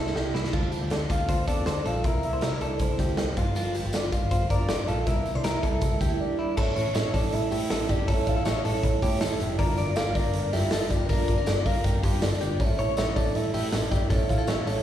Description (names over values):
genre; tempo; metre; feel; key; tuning
jangly indie pop; 159 BPM; 4/4; straight; unclear; A4 = 439 Hz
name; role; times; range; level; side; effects
soft octave-layered synth lead; melody; 0.0-14.8 s; C5 to G5; -31 LUFS; left 1 dB; chorus, tremolo, slapback echo
picked steel-string acoustic guitar; accompaniment; 0.0-14.8 s; G2 to A4; -33 LUFS; right 5 dB; slapback echo
direct-recorded clean electric guitar; arpeggios; 0.0-14.8 s; E4 to D5; -34 LUFS; left 2 dB; slapback echo
vintage muted picked electric bass; bass; 0.0-14.8 s; F1 to A2; -29 LUFS; equal; none
raw garage drum kit; drums; 0.1-14.8 s; crash cymbal, hi-hat, kick drum, snare drum; -27 LUFS; equal; none
tambourine; percussion; 3.6-14.8 s; none; -46 LUFS; left 5 dB; none
phased string machine; sustained chords; 6.6-14.8 s; G3 to Bb4; -38 LUFS; equal; ensemble chorus, phaser
room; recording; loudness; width
light reverb, small room ambience; live gig heard through the venue's PA, recital hall reverb; -23 LUFS; side -11 dB against mid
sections
0.5-6.6 A section; 6.6-14.8 B section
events
drum fill 0.0-0.5; break 6.2-6.6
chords
0.0 C7; 0.5 Dm7; 2.0 C7; 3.4 Gm7; 5.1 C7; 6.6 A; 9.6 Gm7; 12.6 A